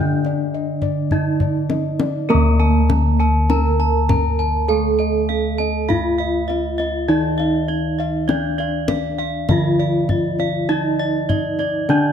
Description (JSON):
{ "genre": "Javanese gamelan", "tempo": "50 BPM", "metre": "4/4", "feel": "straight", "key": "D pelog", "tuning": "A4 = 440 Hz", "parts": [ { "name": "gamelan-type bronze metallophone", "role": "melody", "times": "0.0-12.1 s", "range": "Bb3-20c to Bb4-20c", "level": "-22 LUFS", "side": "right 1 dB", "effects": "none" }, { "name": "gamelan-type bronze metallophone", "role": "accompaniment", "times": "0.0-12.1 s", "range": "D3 to Bb3-20c", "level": "-25 LUFS", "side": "right 2 dB", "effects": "none" }, { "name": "gamelan-type bossed gongs", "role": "arpeggios", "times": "0.0-12.1 s", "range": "D5 to Bb5-20c", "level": "-26 LUFS", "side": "left 6 dB", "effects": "none" }, { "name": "gamelan-type bossed gongs", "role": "bass", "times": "0.0-12.1 s", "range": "D2 to D5", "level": "-21 LUFS", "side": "left 1 dB", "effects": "none" }, { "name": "kendang", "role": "percussion", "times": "0.2-12.1 s", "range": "none", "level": "-24 LUFS", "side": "left 3 dB", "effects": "none" }, { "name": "gamelan-type bronze metallophone", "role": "arpeggios", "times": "2.3-12.1 s", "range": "Bb4-20c to Bb5-20c", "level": "-26 LUFS", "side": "right 7 dB", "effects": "none" } ], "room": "moderate recital hall reverb, RT60 1.4 s", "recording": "close, detailed microphones", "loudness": "-16 LUFS", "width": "side -8 dB against mid", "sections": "0.0-2.3 A section; 2.3-12.1 B section", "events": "drum fill 0.8-2.3", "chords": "none" }